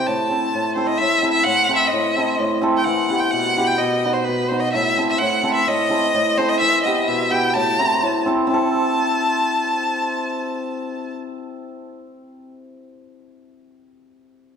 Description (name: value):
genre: klezmer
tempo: 128 BPM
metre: 2/4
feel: straight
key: A dorian sharp4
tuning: A4 = 440 Hz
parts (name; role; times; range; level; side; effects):
- rich violin; melody; 0.0-11.1 s; B4 to A5; -20 LUFS; equal; none
- hammered dulcimer; accompaniment; 0.0-12.5 s; A2 to A4; -21 LUFS; equal; none
room: wet scoring stage reverb, RT60 2.0 s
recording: recorded in a church or concert hall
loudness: -17 LUFS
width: side -7 dB against mid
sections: 1.0-8.5 A section; 8.5-10.4 B section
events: none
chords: 0.1 Am; 2.9 Em; 3.8 B; 4.7 Am; 6.6 Em; 7.6 Am